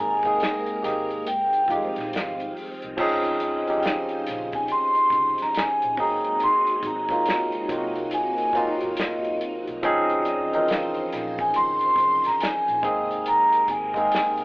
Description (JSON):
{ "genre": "R&B, neo-soul", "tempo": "70 BPM", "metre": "4/4", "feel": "swing 63% on 16ths", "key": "unclear", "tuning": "A4 = 441 Hz", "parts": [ { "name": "vibraphone with soft mallets", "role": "melody", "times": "0.0-14.4 s", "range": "D5 to C6", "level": "-22 LUFS", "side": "equal", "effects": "none" }, { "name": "barky tine electric piano", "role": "accompaniment", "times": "0.0-14.4 s", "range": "E3 to Bb4", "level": "-26 LUFS", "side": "equal", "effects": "none" }, { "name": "phased string machine", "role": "sustained chords", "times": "0.0-14.4 s", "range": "C3 to C5", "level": "-35 LUFS", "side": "equal", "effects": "ensemble chorus, phaser" }, { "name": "vintage muted fingered electric bass", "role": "bass", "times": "0.0-14.1 s", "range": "F1 to Db2", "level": "-48 LUFS", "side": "equal", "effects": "none" }, { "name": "warm soul drum kit", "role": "drums", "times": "0.2-14.4 s", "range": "crash cymbal, hi-hat, kick drum, snare drum", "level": "-31 LUFS", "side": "equal", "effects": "none" } ], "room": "light reverb", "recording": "band playing live in one room, telephone sound", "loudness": "-21 LUFS", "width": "side -26 dB against mid", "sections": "0.0-3.0 A section; 3.0-14.4 A section", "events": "none", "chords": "0.0 Abmaj9; 1.3 Fm7; 3.0 Dbmaj9; 6.0 Ab7; 9.8 Dbmaj9; 12.8 Abadd9" }